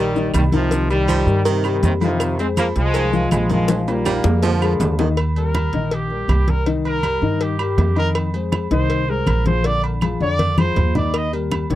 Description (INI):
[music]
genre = latin, salsa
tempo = 161 BPM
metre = 4/4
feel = straight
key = Eb major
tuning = A4 = 440 Hz
[part]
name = bright trombone section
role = melody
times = 0.0-5.0 s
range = C3 to C4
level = -22 LUFS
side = equal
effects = none
[part]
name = clear baritone saxophone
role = second line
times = 0.0-5.1 s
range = D3 to G3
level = -25 LUFS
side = right 8 dB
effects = none
[part]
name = dark grand piano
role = accompaniment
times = 0.0-11.8 s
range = D3 to G5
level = -23 LUFS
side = left 5 dB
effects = none
[part]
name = upright bass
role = bass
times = 0.0-11.8 s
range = Bb1 to G2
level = -20 LUFS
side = right 1 dB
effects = none
[part]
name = congas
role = percussion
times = 0.2-11.8 s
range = none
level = -24 LUFS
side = equal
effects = none
[part]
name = maracas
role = percussion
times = 0.2-5.2 s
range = none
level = -38 LUFS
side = left 9 dB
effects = none
[part]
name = claves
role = percussion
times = 0.3-11.7 s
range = none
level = -33 LUFS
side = right 11 dB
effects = none
[part]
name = cowbell and bongos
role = percussion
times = 0.3-11.8 s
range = none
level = -29 LUFS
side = left 4 dB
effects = none
[part]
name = timbales and agogo bells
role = percussion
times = 0.3-11.7 s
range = none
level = -29 LUFS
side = right 5 dB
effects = none
[part]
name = warm trumpet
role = melody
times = 5.4-11.8 s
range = G4 to Eb5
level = -24 LUFS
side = right 2 dB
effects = none
[sound]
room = little or no reverb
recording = dry, close 1970s-style studio recording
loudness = -16 LUFS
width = side -14 dB against mid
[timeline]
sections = 0.0-5.2 A section; 5.2-11.8 B section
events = drum fill 3.7-5.2, 10.4-11.1; trumpet solo 5.2-11.8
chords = 0.0 Eb; 0.7 Cm7; 2.2 Fm7; 3.7 Bb7; 5.2 Eb; 6.7 Cm7; 8.2 Fm7; 9.7 Bb7; 11.1 Eb